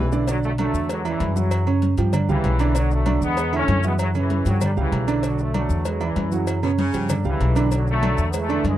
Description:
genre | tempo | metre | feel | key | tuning
latin, salsa | 193 BPM | 4/4 | straight | unclear | A4 = 440 Hz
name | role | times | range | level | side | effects
clear trombone section | melody | 0.0-8.8 s | C#3 to C#4 | -26 LUFS | left 2 dB | none
clear concert grand piano | accompaniment | 0.0-8.7 s | C#3 to F5 | -24 LUFS | right 6 dB | none
upright bass | bass | 0.0-8.8 s | B1 to G2 | -22 LUFS | left 1 dB | none
bongos and cowbell | percussion | 0.1-8.8 s | none | -34 LUFS | left 7 dB | none
maracas | percussion | 0.1-8.8 s | none | -41 LUFS | left 16 dB | none
timbales and agogo bells | percussion | 0.1-8.8 s | none | -34 LUFS | right 5 dB | none
congas | percussion | 0.3-8.8 s | none | -29 LUFS | left 2 dB | none
edgy saxophone section | second line | 6.6-7.1 s | B2 to C#3 | -28 LUFS | left 1 dB | none
room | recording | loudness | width
little or no reverb | dry, close 1970s-style studio recording | -19 LUFS | side -12 dB against mid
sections
0.3-8.8 A section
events
drum fill 0.0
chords
0.3 Bm7; 0.9 E7; 1.5 F#5; 2.1 G7; 2.8 Bm7; 3.4 E7; 4.0 F#5; 4.6 G7; 5.2 Bm7; 5.9 E7; 6.5 F#5; 7.1 G7; 7.7 Bm7

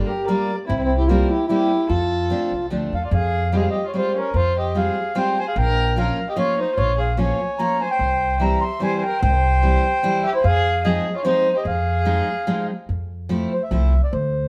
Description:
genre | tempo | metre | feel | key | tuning
musette waltz | 148 BPM | 3/4 | swing 53% on 8ths | F major, F minor from 3.1 s | A4 = 440 Hz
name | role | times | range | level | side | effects
picked steel-string acoustic guitar | accompaniment | 0.0-13.9 s | E3 to F4 | -26 LUFS | equal | none
mellow accordion | melody | 0.1-14.5 s | C4 to C6 | -24 LUFS | equal | none
dark violin | second line | 0.1-12.7 s | Db4 to E5 | -29 LUFS | equal | none
upright bass | bass | 0.7-14.5 s | Bb1 to F2 | -23 LUFS | equal | none
room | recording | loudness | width
moderate stone room reverb, RT60 1.0 s | band playing live in one room | -20 LUFS | mono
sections
0.0-3.1 A section; 3.1-12.9 B section; 12.9-14.5 C section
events
none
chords
0.0 Gm7; 0.7 C7; 1.9 F6; 3.1 Fmadd9; 5.6 Bbm; 8.0 C; 10.4 Fm7; 12.9 Fmaj7

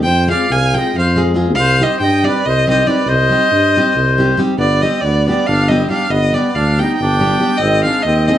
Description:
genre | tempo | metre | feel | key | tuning
balkan folk, Balkan wedding band | 278 BPM (eighths) | 7/8 | straight | unclear | A4 = 440 Hz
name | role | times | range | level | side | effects
warm violin | melody | 0.0-8.4 s | D5 to Ab5 | -16 LUFS | right 1 dB | none
mellow tuba | bass | 0.0-8.3 s | G1 to G2 | -16 LUFS | equal | none
accordion | second line | 0.1-8.4 s | B3 to F5 | -19 LUFS | equal | none
nylon-string guitar | accompaniment | 0.3-8.4 s | G3 to Ab4 | -19 LUFS | left 1 dB | none
room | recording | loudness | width
wet studio ambience, RT60 0.5 s | heard from further back in the room, nothing above 10.6 kHz | -12 LUFS | side -11 dB against mid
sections
0.0-4.6 A section; 4.6-8.4 B section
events
none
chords
0.1 Fm; 1.6 Cm; 4.6 G; 7.6 Ab

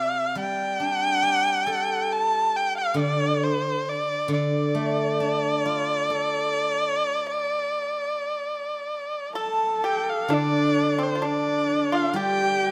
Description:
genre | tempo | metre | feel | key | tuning
chinese traditional, Chinese chamber ensemble | 60-69 BPM | 4/4 | rubato | D yu mode | A4 = 440 Hz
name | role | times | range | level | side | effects
warm erhu | melody | 0.0-12.7 s | C5 to A5 | -27 LUFS | equal | none
steel-string zither | accompaniment | 0.0-12.7 s | C3 to A4 | -30 LUFS | equal | none
warm horsehead fiddle | second line | 9.3-12.7 s | D4 to A4 | -28 LUFS | equal | none
pipa | second line | 9.4-12.7 s | C4 to A4 | -32 LUFS | equal | none
room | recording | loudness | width
moderate recital hall reverb, RT60 1.7 s | close, detailed microphones | -25 LUFS | mono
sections
0.0-10.3 A section; 10.3-12.7 B section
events
none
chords
none

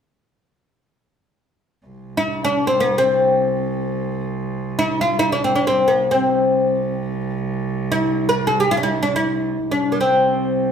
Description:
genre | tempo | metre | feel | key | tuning
arabic | free time | none | none | C maqam huzam | A4 = 440 Hz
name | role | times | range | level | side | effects
rich cello | drone | 1.9-10.7 s | C2 | -26 LUFS | right 4 dB | none
oud | melody | 2.2-10.7 s | Bb3+50c to Bb4+50c | -17 LUFS | left 1 dB | none
room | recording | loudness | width
wet large studio reverb, RT60 1.2 s | band playing live in one room | -17 LUFS | side -7 dB against mid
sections
1.9-10.7 A section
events
none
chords
none

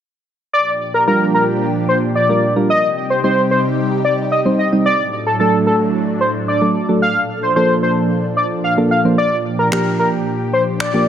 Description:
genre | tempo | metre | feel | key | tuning
dance-pop | 111 BPM | 4/4 | straight | G minor | A4 = 440 Hz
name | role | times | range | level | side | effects
octave-doubled lead | melody | 0.5-11.1 s | A4 to F5 | -16 LUFS | left 1 dB | chorus, digital delay
lush unison pad | sustained chords | 0.7-11.1 s | A2 to A4 | -20 LUFS | equal | chorus, phaser
soft electric-piano-like synth keys | accompaniment | 1.1-11.1 s | F3 to Eb5 | -18 LUFS | right 1 dB | chorus
electronic finger snaps | drums | 9.7-10.9 s | none | -25 LUFS | equal | none
room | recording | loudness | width
moderate lush hall reverb, RT60 1.8 s | none | -14 LUFS | side -9 dB against mid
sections
0.5-11.1 A section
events
none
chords
0.5 Gm7; 2.7 Cm; 4.9 D; 7.0 Bbmaj7; 9.2 Gm7

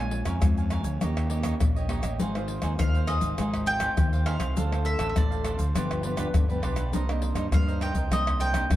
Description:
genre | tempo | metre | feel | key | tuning
samba and choro | 102 BPM | 4/4 | straight | C minor | A4 = 441 Hz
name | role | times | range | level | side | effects
mandolin | melody | 0.0-8.8 s | D5 to Ab5 | -30 LUFS | equal | none
cavaquinho | accompaniment | 0.0-8.6 s | D4 to Ab5 | -36 LUFS | right 3 dB | none
nylon-string guitar | accompaniment | 0.0-8.8 s | G2 to C5 | -33 LUFS | left 1 dB | none
fuzz fingered electric bass | bass | 0.0-8.8 s | G1 to G2 | -28 LUFS | right 1 dB | overdrive
pandeiro, egg shaker, surdo and tamborim | percussion | 0.1-8.8 s | none | -27 LUFS | left 1 dB | none
room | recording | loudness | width
moderate spring reverb, RT60 1.3 s | heard from further back in the room | -24 LUFS | side -14 dB against mid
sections
0.0-8.8 A section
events
none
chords
0.0 Bbm7; 1.0 Eb7; 2.2 Ab6; 4.6 Dm7; 5.7 G7; 6.9 Cm9

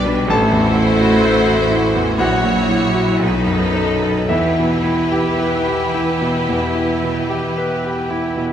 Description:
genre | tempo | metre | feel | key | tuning
classical, romantic movement for piano and orchestra | 51-64 BPM | 4/4 | rubato | E minor | A4 = 438 Hz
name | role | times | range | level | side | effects
clear concert grand piano | melody | 0.0-8.5 s | A1 to D6 | -18 LUFS | equal | none
clear symphonic violin section | melody | 0.0-8.4 s | B4 to C#5 | -25 LUFS | left 1 dB | none
clear symphonic violin section | second line | 0.0-8.5 s | F#4 to B4 | -26 LUFS | left 2 dB | none
clear symphonic viola section | accompaniment | 0.0-8.4 s | D4 to E4 | -24 LUFS | equal | none
mellow French horn section | sustained chords | 0.0-7.5 s | E3 to A3 | -24 LUFS | left 3 dB | none
rich symphonic cello section | bass | 0.0-7.5 s | E3 to A3 | -23 LUFS | right 1 dB | none
rich symphonic double bass section | bass | 0.0-8.4 s | A1 to E2 | -26 LUFS | right 3 dB | none
room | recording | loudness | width
wet recital hall reverb, RT60 1.7 s | none | -14 LUFS | side -9 dB against mid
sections
0.0-8.5 A section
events
none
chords
0.3 F#m7b5/A; 2.2 F#7/A#; 3.2 B7; 4.3 Em

